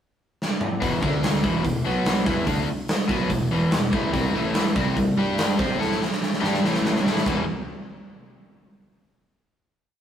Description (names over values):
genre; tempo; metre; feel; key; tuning
hard rock; 144 BPM; 4/4; straight; E minor; A4 = 440 Hz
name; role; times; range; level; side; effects
big rock drum kit; drums; 0.4-7.4 s; crash cymbal, hi-hat, kick drum, snare drum, toms; -24 LUFS; equal; none
cranked stack guitar; riff; 0.8-7.4 s; E2 to C5; -26 LUFS; left 4 dB; overdrive
overdriven semi-hollow guitar; riff; 0.8-7.4 s; E2 to C5; -27 LUFS; right 4 dB; none
fuzz fingered electric bass; bass; 0.8-7.5 s; E1 to C3; -32 LUFS; equal; overdrive
room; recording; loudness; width
wet stone room reverb, RT60 1.1 s; rough rehearsal-room recording; -20 LUFS; side -9 dB against mid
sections
0.0-0.8 pickup bar; 0.8-7.5 riff; 7.5-9.1 final hit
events
drum fill 0.4-0.8, 5.8-7.5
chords
0.0 N.C.; 0.8 E5; 1.0 D5; 1.4 E5; 1.8 B5; 2.3 E5; 4.1 C5; 4.3 A5; 4.8 C5; 5.2 G5; 5.6 C5; 6.6 A5; 7.3 E5; 7.5 N.C.